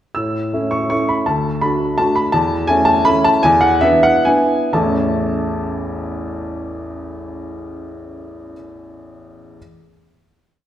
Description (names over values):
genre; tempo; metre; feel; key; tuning
classical, piano waltz; 124-180 BPM; 3/4; rubato; A major; A4 = 440 Hz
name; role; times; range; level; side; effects
warm upright piano; solo; 0.1-9.6 s; A1 to E6; -15 LUFS; equal; none
room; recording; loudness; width
wet recital hall reverb, RT60 1.5 s; heard from further back in the room; -14 LUFS; side -11 dB against mid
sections
0.2-4.7 A section; 4.7-7.5 final chord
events
slowing down 1.8-4.7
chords
0.2 A; 1.3 D; 2.4 A/E; 3.4 E7; 4.7 A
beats
| 0.17 0.54 0.92 | 1.28 1.63 2.00 | 2.35 2.70 3.07 | 3.45 3.84 4.28 | 4.74 5.21 5.68 | 6.13 6.57 7.04